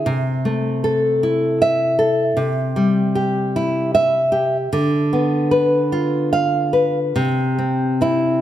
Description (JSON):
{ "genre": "romantic piece for solo classical guitar", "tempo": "51 BPM (dotted quarters)", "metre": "6/8", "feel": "uneven beats, rubato", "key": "C major", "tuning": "A4 = 439 Hz", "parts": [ { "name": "nylon-string guitar", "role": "solo", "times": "0.0-8.4 s", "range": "C3 to F5", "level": "-16 LUFS", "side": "equal", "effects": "none" } ], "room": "moderate concert hall reverb, RT60 2.0 s", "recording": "none", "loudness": "-16 LUFS", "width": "side -12 dB against mid", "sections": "0.0-8.4 A section", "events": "none", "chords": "0.1 Am/C; 2.4 C; 4.7 Bdim/D; 7.2 C" }